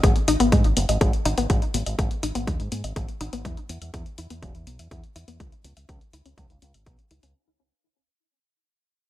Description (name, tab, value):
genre	italo disco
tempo	123 BPM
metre	4/4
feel	straight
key	G# minor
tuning	A4 = 438 Hz
part	analog pluck	arpeggios	0.0-7.3 s	G#3 to E5	-26 LUFS	left 3 dB	chorus, digital delay
part	fingered electric bass with an envelope filter	bass	0.0-7.3 s	E1 to G#2	-28 LUFS	equal	none
part	electronic hi-hat	drums	0.0-7.3 s	none	-32 LUFS	left 2 dB	studio reverb
part	electronic kick drum	drums	0.0-7.0 s	none	-23 LUFS	equal	overdrive, studio reverb
room	little or no reverb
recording	none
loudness	-21 LUFS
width	side -14 dB against mid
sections	0.0-7.4 A section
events	fade-out 0.0-7.4; filter sweep on synth arpeggio sound 0.0-7.4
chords	0.0 G#m; 3.5 E; 5.4 C#m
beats	0.04 0.52 1.01 | 1.50 1.99 2.47 2.96 | 3.45 3.94 4.42 4.91 | 5.40 5.89 6.38 6.86